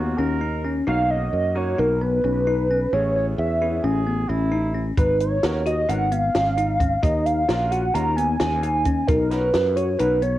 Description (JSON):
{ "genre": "progressive instrumental, band music in an uneven meter", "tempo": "263 BPM (eighths)", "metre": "9/8", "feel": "straight", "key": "unclear", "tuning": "A4 = 439 Hz", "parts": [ { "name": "warm flugelhorn", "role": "second line", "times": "0.0-0.8, 3.8-4.9 s", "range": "E4 to A#4", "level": "-31 LUFS", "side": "right 2 dB", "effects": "cassette tape" }, { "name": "bright concert grand piano", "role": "accompaniment", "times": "0.0-10.2 s", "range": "A#3 to A#4", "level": "-33 LUFS", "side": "right 3 dB", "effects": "cassette tape" }, { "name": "bell-like tine electric piano", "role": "arpeggios", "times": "0.0-10.4 s", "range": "B3 to F#4", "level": "-26 LUFS", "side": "left 3 dB", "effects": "phaser, cassette tape" }, { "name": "sustaining fretless electric bass", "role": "bass", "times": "0.0-10.4 s", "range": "G#1 to F#2", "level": "-24 LUFS", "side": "equal", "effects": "none" }, { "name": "hollow square lead", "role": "melody", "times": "0.9-10.4 s", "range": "A#4 to A#5", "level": "-22 LUFS", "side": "right 1 dB", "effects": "chorus, cassette tape" }, { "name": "compact cocktail drum kit", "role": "drums", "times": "5.0-10.3 s", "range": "hi-hat, kick drum, snare drum", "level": "-24 LUFS", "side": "equal", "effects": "cassette tape" } ], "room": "light reverb, small room ambience", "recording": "home recording on cassette", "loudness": "-19 LUFS", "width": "side -14 dB against mid", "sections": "0.0-10.4 A section", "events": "none", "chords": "0.0 D#m7; 0.9 Bmaj9; 2.9 Amaj7; 5.0 G#m11; 7.0 D#m7; 9.1 Bmaj9" }